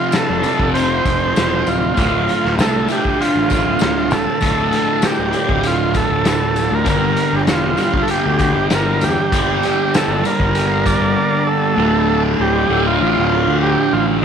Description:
psychedelic rock; 98 BPM; 4/4; straight; D minor; A4 = 440 Hz
overdriven combo organ; melody; 0.0-14.1 s; F4 to D5; -18 LUFS; right 3 dB; slapback echo
combo organ; sustained chords; 0.0-14.2 s; F3 to G4; -29 LUFS; right 9 dB
fuzz guitar; riff; 0.0-14.2 s; D2 to G3; -18 LUFS; left 1 dB; distortion, phaser
raw garage drum kit; drums; 0.1-11.0 s; hi-hat, kick drum, snare drum; -21 LUFS; left 1 dB
tambourine; percussion; 0.1-11.0 s; -37 LUFS; left 13 dB
fuzz fingered electric bass; bass; 0.3-14.2 s; D1 to E2; -22 LUFS; left 1 dB; overdrive
light reverb, studio reverb; 1960s-style stereo with parts hard left and right; -14 LUFS; side -7 dB against mid
0.0-11.8 A section; 11.8-14.2 B section
0.0 Dm; 6.9 Gm; 11.8 Dm

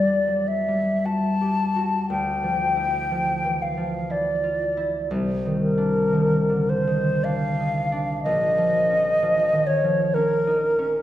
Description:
classical, impressionist duo for flute and harp; 50-63 BPM; 3/4; rubato; A4 = 437 Hz
mellow hollow silver concert flute; melody; 0.0-11.0 s; Bb4 to A5; -22 LUFS; left 1 dB
concert harp; accompaniment; 0.0-11.0 s; Bb1 to G4; -24 LUFS; equal
wet recital hall reverb, RT60 1.7 s; heard from further back in the room; -20 LUFS; side -12 dB against mid
0.0-11.0 A section
0.0 Em11; 2.1 Dmadd9; 5.1 Cm11; 8.2 Bbm

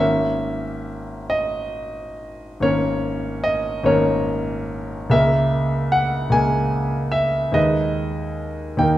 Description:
classical, romantic nocturne for solo piano; 44-51 BPM (dotted quarters); 12/8; rubato; A4 = 440 Hz
clear concert grand piano; solo; 0.0-9.0 s; G#1 to G#5; -19 LUFS; equal
wet recital hall reverb, RT60 1.5 s; -19 LUFS; side -14 dB against mid
0.0-9.0 A section
0.0 A#m7b5/G#; 5.1 A#m7b5/C#; 7.6 G#m/D#

